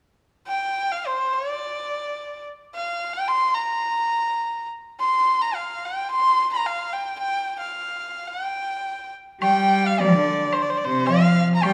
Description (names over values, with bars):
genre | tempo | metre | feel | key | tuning
chinese traditional, Chinese chamber ensemble | 108 BPM | 2/4 | rubato | G yu mode | A4 = 440 Hz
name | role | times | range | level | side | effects
clear erhu | melody | 0.5-11.7 s | C5 to C6 | -25 LUFS | equal | none
bright cello | second line | 9.4-11.7 s | C3 to G3 | -22 LUFS | equal | none
mellow hollow large dizi | second line | 9.4-11.7 s | C5 to G5 | -28 LUFS | equal | none
woodblock | percussion | 9.4-11.7 s | none | -34 LUFS | equal | none
room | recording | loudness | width
moderate concert hall reverb, RT60 2.1 s | small room ambience | -23 LUFS | mono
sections
0.5-9.4 A section; 9.4-11.7 B section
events
none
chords
none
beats
| 0.49 1.06 | 1.62 2.18 | 2.73 3.29 | 3.84 4.40 | 4.97 5.53 | 6.08 6.63 | 7.17 7.73 | 8.29 8.85 | 9.42 9.98 | 10.53 11.08 | 11.62